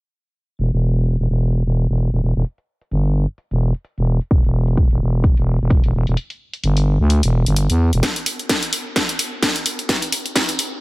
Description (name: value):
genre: bass house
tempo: 129 BPM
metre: 4/4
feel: swing 57% on 16ths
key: E minor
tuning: A4 = 440 Hz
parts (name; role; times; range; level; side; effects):
- growling FM bass; bass; 0.6-8.0 s; E1 to E2; -16 LUFS; equal; overdrive, sidechain pumping
- house drum kit; drums; 0.6-10.7 s; hi-hat, snare drum; -20 LUFS; equal; high-pass filter on hats, small room ambience, high-pass filter on snare
- electronic kick drum; drums; 4.3-10.5 s; none; -17 LUFS; equal; high-pass filter on kick, small room ambience
room: little or no reverb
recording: low-pass filter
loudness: -16 LUFS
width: side -20 dB against mid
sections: 0.6-8.0 A section; 8.0-10.8 B section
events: filter sweep 0.6-8.0; kick drops out 6.2-8.0; build-up 8.0-10.8; drum fill 8.0-10.8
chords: none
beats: | 0.59 1.05 1.52 1.98 | 2.45 2.92 3.38 3.85 | 4.31 4.78 5.24 5.71 | 6.17 6.63 7.10 7.57 | 8.03 8.50 8.96 9.43 | 9.89 10.36